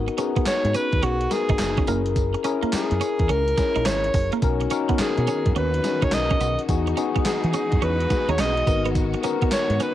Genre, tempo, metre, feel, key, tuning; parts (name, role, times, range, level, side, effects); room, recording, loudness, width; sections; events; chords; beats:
R&B, new jack swing; 106 BPM; 4/4; swing 65% on 16ths; B major; A4 = 440 Hz
tine electric piano; accompaniment; 0.0-9.9 s; B3 to C#5; -26 LUFS; left 7 dB; analog chorus
deep dub fingered electric bass; bass; 0.0-9.8 s; F#1 to E3; -26 LUFS; right 1 dB
twelve-string electric guitar; riff; 0.1-9.9 s; A#3 to D#4; -30 LUFS; right 9 dB; analog chorus
gated 80s digital drum machine; drums; 0.1-9.9 s; handclaps, hi-hat, kick drum, snare drum, tambourine; -25 LUFS; right 1 dB; gated reverb, gated reverb snare, overdrive, cassette tape
bright alto saxophone; melody; 0.5-9.9 s; F#4 to D#5; -26 LUFS; right 1 dB; cassette tape
warm studio string section; sustained chords; 4.4-9.9 s; D#3 to F#4; -34 LUFS; equal
little or no reverb; home recording on cassette; -20 LUFS; side -12 dB against mid
0.0-9.9 A section
0.0 G#m7; 1.9 F#9; 4.4 Bmaj7; 6.7 Emaj9; 8.7 G#m7
0.46 1.03 1.59 | 2.16 2.73 3.29 3.86 | 4.42 4.99 5.56 6.12 | 6.69 7.25 7.82 8.39 | 8.95 9.52